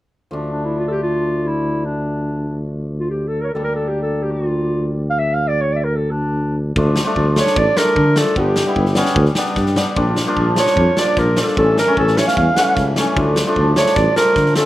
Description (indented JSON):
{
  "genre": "klezmer",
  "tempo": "150 BPM",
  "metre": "4/4",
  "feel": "straight",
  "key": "D harmonic minor",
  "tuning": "A4 = 440 Hz",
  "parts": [
    { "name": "hammered dulcimer", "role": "accompaniment", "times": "0.3-14.7 s", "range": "E3 to E4", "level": "-22 LUFS", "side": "left 1 dB", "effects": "slapback echo" },
    { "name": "dark tuba", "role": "bass", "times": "0.3-14.6 s", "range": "G1 to D3", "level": "-19 LUFS", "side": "equal", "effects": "none" },
    { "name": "mellow clarinet", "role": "melody", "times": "0.5-14.7 s", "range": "D4 to F5", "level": "-18 LUFS", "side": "right 1 dB", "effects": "slapback echo" },
    { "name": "big rock drum kit", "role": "drums", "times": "6.8-14.7 s", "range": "kick drum, snare drum", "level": "-21 LUFS", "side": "equal", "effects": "none" }
  ],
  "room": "little or no reverb",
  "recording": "none",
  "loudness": "-15 LUFS",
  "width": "side -15 dB against mid",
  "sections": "0.3-6.8 A section; 6.8-14.7 B section",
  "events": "none",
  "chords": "0.3 Dm; 3.5 Gm/D; 6.8 Dm; 8.4 G; 10.0 Bb; 11.6 A; 13.2 Dm",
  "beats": "| 0.32 0.72 1.12 1.53 | 1.93 2.34 2.74 3.14 | 3.55 3.95 4.35 4.76 | 5.16 5.56 5.96 6.37 | 6.77 7.17 7.57 7.97 | 8.37 8.77 9.17 9.57 | 9.97 10.37 10.77 11.17 | 11.57 11.97 12.37 12.77 | 13.17 13.57 13.97 14.36"
}